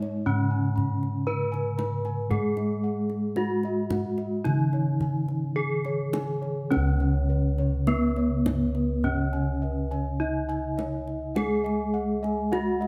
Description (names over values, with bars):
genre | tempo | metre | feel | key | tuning
Javanese gamelan | 52-60 BPM | 4/4 | straight | C# slendro | A4 = 440 Hz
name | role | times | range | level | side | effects
gamelan-type bronze metallophone | melody | 0.0-12.9 s | B3-40c to B4-40c | -32 LUFS | equal | none
gamelan-type bronze metallophone | accompaniment | 0.0-12.9 s | C#3 to G#3+20c | -33 LUFS | equal | none
gamelan-type bossed gongs | arpeggios | 0.0-12.9 s | B4-40c to B5-40c | -40 LUFS | equal | none
gamelan-type bossed gongs | bass | 0.0-12.9 s | C#2 to G#4+20c | -31 LUFS | equal | none
kendang | percussion | 0.0-12.9 s | none | -36 LUFS | equal | none
gamelan-type bronze metallophone | arpeggios | 6.7-12.9 s | B4-40c to G#5+20c | -40 LUFS | equal | none
room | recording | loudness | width
moderate recital hall reverb, RT60 1.4 s | close, detailed microphones | -27 LUFS | mono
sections
0.0-6.7 A section; 6.7-12.9 B section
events
none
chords
none